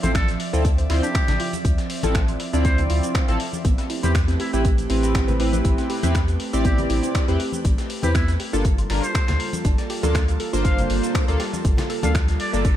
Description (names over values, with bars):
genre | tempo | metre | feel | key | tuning
deep house | 120 BPM | 4/4 | swing 54% on 16ths | D minor | A4 = 440 Hz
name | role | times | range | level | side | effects
trumpet with metal mute | melody | 0.0-12.6 s | E4 to F5 | -30 LUFS | equal | vintage 12-bit sampler grit, analog delay
airy breathy pad | sustained chords | 0.0-12.8 s | F3 to E5 | -30 LUFS | right 1 dB | chorus, sidechain pumping
chorused polysynth | stabs | 0.0-12.6 s | Bb3 to D5 | -26 LUFS | equal | cassette tape, ping-pong delay
warm sub bass | bass | 0.0-12.8 s | G1 to E2 | -22 LUFS | equal | none
dusty soul sampler-style drum kit | drums | 0.0-12.8 s | cabasa, finger snaps, hi-hat | -32 LUFS | left 1 dB | none
congas | percussion | 0.0-12.1 s | none | -32 LUFS | left 4 dB | none
downlifter and noise sweep | sound effects | 0.0-1.6, 12.3-12.8 s | none | -42 LUFS | right 7 dB | none
dusty soul sampler-style drum kit | drums | 0.1-12.8 s | hi-hat, snare drum | -38 LUFS | equal | high-pass filter on hats, high-pass filter on snare, high-pass filter on room
electronic kick drum | drums | 0.1-12.8 s | none | -21 LUFS | equal | none
analog pluck | arpeggios | 0.6-12.8 s | B3 to D5 | -34 LUFS | right 3 dB | chorus, cassette tape, sidechain pumping, diffuse ambient delay
room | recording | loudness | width
light reverb | none | -19 LUFS | side -12 dB against mid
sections
0.0-12.8 A section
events
noise sweep 12.3-12.8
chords
0.0 Dm9; 3.6 Am9; 8.4 Gm9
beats
0.15 0.65 1.15 | 1.65 2.15 2.65 3.15 | 3.65 4.15 4.65 5.15 | 5.65 6.15 6.65 7.15 | 7.65 8.15 8.65 9.15 | 9.65 10.15 10.65 11.15 | 11.65 12.15 12.65